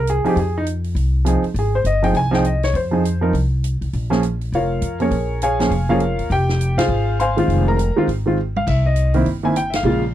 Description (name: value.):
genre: jazz piano trio.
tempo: 202 BPM.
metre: 4/4.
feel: swing 61% on 8ths.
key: F minor.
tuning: A4 = 439 Hz.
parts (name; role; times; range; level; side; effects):
warm concert grand piano; melody; 0.0-10.0 s; Db3 to C6; -18 LUFS; right 1 dB; none.
upright bass; bass; 0.0-10.1 s; F1 to F2; -20 LUFS; equal; none.
swinging big-band drum kit; drums; 0.1-9.8 s; crash cymbal, hi-hat, kick drum, ride cymbal, snare drum, toms; -31 LUFS; right 1 dB; none.
room: little or no reverb.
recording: dry, close 1970s-style studio recording.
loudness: -16 LUFS.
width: side -12 dB against mid.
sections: 0.0-10.1 A section.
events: band accent 6.7, 9.7; drum fill 8.4.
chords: 0.0 Fm7; 3.9 Bbm7; 6.3 Fm7; 8.7 C(#9).